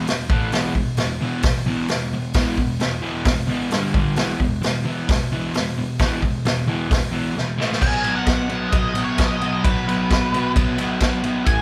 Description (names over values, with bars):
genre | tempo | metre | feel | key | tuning
garage rock duo or trio | 132 BPM | 4/4 | straight | unclear | A4 = 440 Hz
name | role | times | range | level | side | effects
fuzz guitar | riff | 0.0-11.6 s | E2 to B3 | -24 LUFS | equal | distortion
vintage drum kit | drums | 0.1-11.6 s | crash cymbal, hi-hat, kick drum, ride cymbal, snare drum | -24 LUFS | equal | none
octave-fuzz lead guitar | melody | 7.8-11.6 s | B4 to G#5 | -27 LUFS | equal | distortion
room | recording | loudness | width
moderate large studio reverb, RT60 1.1 s | band playing live in one room | -21 LUFS | mono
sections
0.0-7.8 A section; 7.8-11.6 B section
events
drum fill 7.4-7.8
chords
0.3 A5; 0.5 E5; 3.7 G5; 4.2 E5; 7.6 A5; 7.8 B5